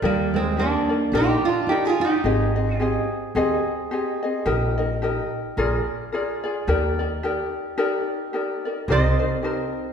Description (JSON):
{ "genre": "Hawaiian", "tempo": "108 BPM", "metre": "4/4", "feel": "swing 57% on 8ths", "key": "Eb major", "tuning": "A4 = 438 Hz", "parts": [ { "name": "picked steel-string acoustic guitar", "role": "second line", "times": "0.0-3.1, 8.9-9.9 s", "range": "G3 to F4", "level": "-27 LUFS", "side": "right 4 dB", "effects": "none" }, { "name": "ukulele", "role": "accompaniment", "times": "0.0-9.9 s", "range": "C4 to Eb5", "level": "-24 LUFS", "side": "left 2 dB", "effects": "none" }, { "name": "upright bass", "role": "bass", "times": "0.0-9.1 s", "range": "Ab1 to Eb2", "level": "-26 LUFS", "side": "equal", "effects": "none" }, { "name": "metal-body resonator slide guitar", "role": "melody", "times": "0.1-3.1, 8.9-9.9 s", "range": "G3 to Eb5", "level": "-23 LUFS", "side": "right 2 dB", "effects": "none" } ], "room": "wet scoring stage reverb, RT60 1.5 s", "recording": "recorded in a church or concert hall", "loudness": "-20 LUFS", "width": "side -7 dB against mid", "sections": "0.0-8.9 A section; 8.9-9.9 B section", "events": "none", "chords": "0.0 Ebmaj7; 2.2 Abmaj7; 4.5 Eb/Bb; 5.6 Bb7; 6.7 Ebmaj7; 8.9 Cm7" }